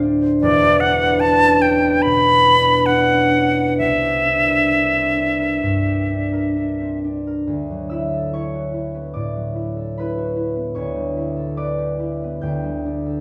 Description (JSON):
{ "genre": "classical, impressionist duo for flute and harp", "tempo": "64-76 BPM", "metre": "4/4", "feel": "rubato", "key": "D major", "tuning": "A4 = 440 Hz", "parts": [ { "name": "concert harp", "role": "accompaniment", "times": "0.0-13.2 s", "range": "E1 to G6", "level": "-22 LUFS", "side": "equal", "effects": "none" }, { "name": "bright concert flute", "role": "melody", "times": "0.4-7.0 s", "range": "D5 to B5", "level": "-18 LUFS", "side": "equal", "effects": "none" } ], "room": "wet recital hall reverb, RT60 1.4 s", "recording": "none", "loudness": "-18 LUFS", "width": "mono", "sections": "0.0-7.5 A section; 7.5-13.2 B section", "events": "none", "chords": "0.4 Esus2; 3.8 C9; 7.5 D69; 10.8 A9sus4/D; 12.4 Gadd9/D", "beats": "| 0.41 1.21 2.03 2.88 | 3.79 4.71 5.63 6.56 | 7.48 8.32 9.14 9.96 | 10.77 11.58 12.44" }